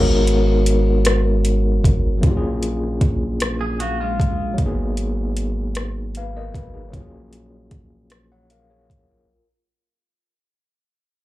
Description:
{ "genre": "slow six-eight R&B", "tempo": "51 BPM (dotted quarters)", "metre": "6/8", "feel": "straight", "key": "unclear", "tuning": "A4 = 437 Hz", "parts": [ { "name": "overdriven tine electric piano", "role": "accompaniment", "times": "0.0-9.5 s", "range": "F#3 to F#5", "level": "-23 LUFS", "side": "left 1 dB", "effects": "fast tremolo, plate reverb, slapback echo" }, { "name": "rubbery square bass", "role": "bass", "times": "0.0-9.3 s", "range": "G#1 to A#1", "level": "-21 LUFS", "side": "equal", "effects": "none" }, { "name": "smooth R&B drum kit", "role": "drums", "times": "0.3-9.1 s", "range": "hi-hat, kick drum, rim click", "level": "-20 LUFS", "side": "equal", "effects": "overdrive" }, { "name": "clean electric guitar", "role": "second line", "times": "3.6-4.6 s", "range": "G#3 to G#4", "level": "-26 LUFS", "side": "equal", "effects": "plate reverb, slapback echo" } ], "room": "light reverb", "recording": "live gig heard through the venue's PA, club reverb", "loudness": "-17 LUFS", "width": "side -16 dB against mid", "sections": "0.0-9.3 A section", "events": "fade-out 0.0-9.3", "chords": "0.0 G#m9; 2.2 F#maj9/A#; 4.6 G#m9; 6.9 F#maj9/A#", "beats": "1.05 | 2.23 3.40 | 4.58 5.75 | 6.93 8.11" }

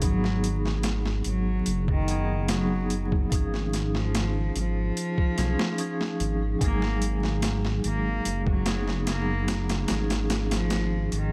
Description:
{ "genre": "trip hop", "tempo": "73 BPM", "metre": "4/4", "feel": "straight", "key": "G# dorian", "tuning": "A4 = 438 Hz", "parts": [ { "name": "rich cello", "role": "melody", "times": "0.0-11.3 s", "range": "D#3 to A#3", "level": "-34 LUFS", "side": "equal", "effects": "tape echo" }, { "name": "vibraphone with medium mallets", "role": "accompaniment", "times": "0.0-11.3 s", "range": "E#3 to G#4", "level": "-34 LUFS", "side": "equal", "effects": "tremolo, low-pass filter, tape echo" }, { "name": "dark detuned saw bass", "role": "bass", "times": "0.0-11.3 s", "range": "F#1 to B1", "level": "-30 LUFS", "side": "equal", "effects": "none" }, { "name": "boom bap sampler-style drum kit", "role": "drums", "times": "0.0-11.3 s", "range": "hi-hat, kick drum, snare drum", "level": "-32 LUFS", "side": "equal", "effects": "overdrive" } ], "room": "small room ambience", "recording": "vinyl crackle", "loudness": "-26 LUFS", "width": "mono", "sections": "0.0-11.3 A section", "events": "none", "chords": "0.0 G#m7; 3.3 C#add9/G#; 6.6 G#m7; 9.9 C#add9/G#", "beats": "| 0.03 0.85 1.67 2.50 | 3.32 4.14 4.96 5.78 | 6.61 7.43 8.25 9.07 | 9.89 10.71" }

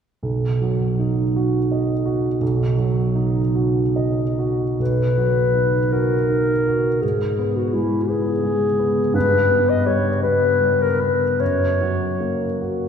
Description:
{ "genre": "classical, romantic duo for clarinet and grand piano", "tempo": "46-58 BPM (dotted quarters)", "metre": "6/8", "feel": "rubato", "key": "B major", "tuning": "A4 = 440 Hz", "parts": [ { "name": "warm grand piano", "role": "accompaniment", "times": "0.2-12.9 s", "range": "B1 to D#5", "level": "-19 LUFS", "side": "right 2 dB", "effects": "none" }, { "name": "warm clarinet", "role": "melody", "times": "4.8-12.6 s", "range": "E4 to D#5", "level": "-20 LUFS", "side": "left 3 dB", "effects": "none" } ], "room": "wet church reverb, RT60 3.0 s", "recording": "heard from further back in the room", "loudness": "-17 LUFS", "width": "side -7 dB against mid", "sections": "0.2-4.8 A section; 4.8-12.9 B section", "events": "none", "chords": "0.2 B; 7.0 G#m; 9.2 G; 11.4 F#", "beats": "| 0.23 1.36 | 2.42 3.56 | 4.80 5.94 | 7.03 8.10 | 9.15 10.24 | 11.41 12.61" }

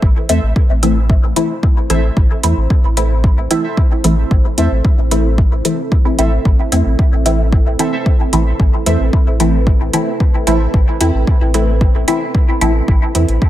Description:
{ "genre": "dub techno", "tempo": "112 BPM", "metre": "4/4", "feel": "straight", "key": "A minor", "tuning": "A4 = 440 Hz", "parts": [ { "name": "deep dark ambient pad", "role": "sustained chords", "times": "0.8-13.5 s", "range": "C4 to C5", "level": "-24 LUFS", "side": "right 2 dB", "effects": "chorus, built-in reverb, sidechain pumping" }, { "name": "pure sine sub bass", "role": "bass", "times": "0.0-13.4 s", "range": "A1 to E2", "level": "-15 LUFS", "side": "equal", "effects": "tube saturation, sidechain pumping" }, { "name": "electronic kick drum", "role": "drums", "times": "0.0-13.5 s", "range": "none", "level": "-13 LUFS", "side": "equal", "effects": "overdrive" }, { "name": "warbly lo-fi synth keys", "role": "riff", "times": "0.3-12.2 s", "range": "A4 to E5", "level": "-28 LUFS", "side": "right 3 dB", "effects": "chorus, phaser, sidechain pumping, dub echo" }, { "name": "filtered dub chord stab", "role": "stabs", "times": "0.3-13.2 s", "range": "E3 to E4", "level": "-18 LUFS", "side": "equal", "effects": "phaser, sidechain pumping, dub echo" }, { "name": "electronic hi-hat", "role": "drums", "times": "0.3-13.4 s", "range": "none", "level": "-20 LUFS", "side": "right 1 dB", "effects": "overdrive" } ], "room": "little or no reverb", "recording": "none", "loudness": "-11 LUFS", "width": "side -13 dB against mid", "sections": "0.0-13.5 A section", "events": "none", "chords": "0.0 Am", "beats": "| 0.03 0.56 1.10 1.63 | 2.17 2.70 3.24 3.77 | 4.31 4.85 5.38 5.92 | 6.45 6.99 7.53 8.06 | 8.60 9.13 9.67 10.20 | 10.74 11.28 11.81 12.35 | 12.88 13.42" }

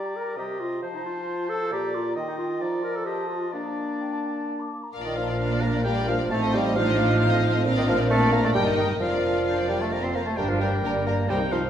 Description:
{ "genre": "quick classical-period movement for symphony orchestra", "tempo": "132 BPM", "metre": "3/4", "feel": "straight", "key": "Bb major", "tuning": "A4 = 440 Hz", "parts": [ { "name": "clear clarinet", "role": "second line", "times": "0.0-11.6 s", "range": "D4 to D5", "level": "-31 LUFS", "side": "left 1 dB", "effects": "none" }, { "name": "clear oboe", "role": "second line", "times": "0.0-11.7 s", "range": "C5 to C6", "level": "-33 LUFS", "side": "equal", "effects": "none" }, { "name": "mellow hollow small flute group", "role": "second line", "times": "0.0-11.7 s", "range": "C5 to D6", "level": "-35 LUFS", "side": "left 1 dB", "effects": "none" }, { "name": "mellow bassoon", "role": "accompaniment", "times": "0.0-11.6 s", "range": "Bb2 to C4", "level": "-28 LUFS", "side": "right 1 dB", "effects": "none" }, { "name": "rich chamber violin section", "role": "melody", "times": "4.9-11.6 s", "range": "Bb4 to G5", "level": "-32 LUFS", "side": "left 5 dB", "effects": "none" }, { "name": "rich chamber violin section", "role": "second line", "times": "4.9-11.6 s", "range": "C4 to D5", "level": "-36 LUFS", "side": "left 2 dB", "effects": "none" }, { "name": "rich chamber viola section", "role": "accompaniment", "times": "4.9-11.7 s", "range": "Bb3 to F4", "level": "-31 LUFS", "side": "right 3 dB", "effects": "none" }, { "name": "mellow French horn section", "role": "sustained chords", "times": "4.9-11.5 s", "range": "C4 to C5", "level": "-32 LUFS", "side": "left 3 dB", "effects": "none" }, { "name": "dark chamber double bass section", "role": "bass", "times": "4.9-11.7 s", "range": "F1 to C2", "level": "-29 LUFS", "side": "right 1 dB", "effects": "none" }, { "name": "rich studio cello section", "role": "bass", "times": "4.9-11.7 s", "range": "C2 to Bb2", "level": "-29 LUFS", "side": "right 2 dB", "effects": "none" } ], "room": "wet recital hall reverb, RT60 1.4 s", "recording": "recorded in a church or concert hall", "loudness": "-22 LUFS", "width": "side -9 dB against mid", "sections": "0.0-4.9 A section; 4.9-11.7 B section", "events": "none", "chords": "0.4 Cm7; 0.8 F; 1.7 Bb; 2.2 Eb; 2.6 Bb/F; 3.5 Bb; 6.3 F7/A; 7.7 Bb; 8.6 Eb/G; 9.0 Bb/F; 9.9 F; 10.4 Gm", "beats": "0.38 | 0.83 1.27 1.72 | 2.16 2.61 3.06 | 3.53 4.00 4.47 | 4.94 5.40 5.86 | 6.31 6.76 7.21 | 7.66 8.11 8.56 | 9.01 9.47 9.92 | 10.38 10.84 11.29" }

